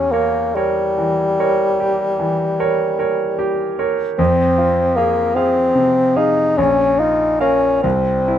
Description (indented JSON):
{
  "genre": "classical, romantic duo for bassoon and grand piano",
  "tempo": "44-52 BPM (dotted quarters)",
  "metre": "12/8",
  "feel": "rubato",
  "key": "unclear",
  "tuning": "A4 = 437 Hz",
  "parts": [
    { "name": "mellow bassoon", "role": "melody", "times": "0.0-8.4 s", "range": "G3 to Eb4", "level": "-16 LUFS", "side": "left 2 dB", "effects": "none" },
    { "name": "bright grand piano", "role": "accompaniment", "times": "0.0-8.4 s", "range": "Bb1 to F5", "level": "-19 LUFS", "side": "right 2 dB", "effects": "none" }
  ],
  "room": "little or no reverb",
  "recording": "close, detailed microphones",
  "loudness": "-14 LUFS",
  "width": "side -10 dB against mid",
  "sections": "0.0-8.4 A section",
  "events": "none",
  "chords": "0.0 Edim7; 4.2 Fm; 6.6 Bb5; 7.8 C",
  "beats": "0.56 1.79 2.99 | 4.19 5.36 6.58 7.84"
}